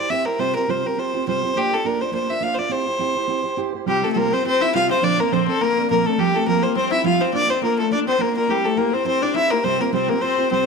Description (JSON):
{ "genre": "celtic folk, Celtic reel", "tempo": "207 BPM", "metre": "4/4", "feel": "swing 54% on 8ths", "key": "C mixolydian", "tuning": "A4 = 440 Hz", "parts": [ { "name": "clear fiddle", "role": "melody", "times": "0.0-10.7 s", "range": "G4 to F5", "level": "-20 LUFS", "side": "left 1 dB", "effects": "none" }, { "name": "fingerpicked steel-string acoustic guitar", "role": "accompaniment", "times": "0.0-10.7 s", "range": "Bb2 to C5", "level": "-24 LUFS", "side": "right 11 dB", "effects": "none" }, { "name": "rich viola", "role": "second line", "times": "3.9-10.7 s", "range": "G3 to F4", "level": "-23 LUFS", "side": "left 12 dB", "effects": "none" } ], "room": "moderate echo chamber reverb, RT60 1.8 s, small room ambience", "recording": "1960s-style stereo with parts hard left and right", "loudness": "-18 LUFS", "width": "side -4 dB against mid", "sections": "0.0-3.9 A section; 3.9-10.7 A section", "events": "none", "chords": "0.4 Fsus2/C; 1.6 Bb; 2.7 C; 3.9 Csus4; 5.0 Bbadd9; 6.2 Fsus2; 7.3 Bb; 8.5 C; 9.7 Fsus2/C" }